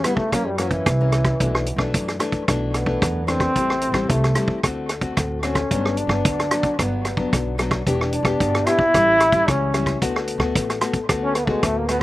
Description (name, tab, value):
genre	samba and choro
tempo	111 BPM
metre	4/4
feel	straight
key	D major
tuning	A4 = 440 Hz
part	warm trombone	melody	0.0-12.0 s	E3 to E4	-21 LUFS	equal	slapback echo
part	nylon-string guitar	accompaniment	0.0-12.0 s	F#2 to G4	-25 LUFS	left 3 dB	slapback echo
part	vintage drum kit	drums	0.0-12.0 s	hi-hat, kick drum, rim click	-22 LUFS	right 1 dB	none
part	upright bass	bass	0.3-12.0 s	E1 to F#2	-25 LUFS	right 1 dB	none
room	little or no reverb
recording	recorded outdoors, with no room sound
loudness	-18 LUFS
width	side -17 dB against mid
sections	0.0-12.0 A section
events	trombone solo 0.0-12.0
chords	0.3 F#7; 1.4 Bm7; 3.6 Am7; 4.6 D7; 5.7 Gmaj7; 7.9 Em7; 8.9 A7; 10.0 D6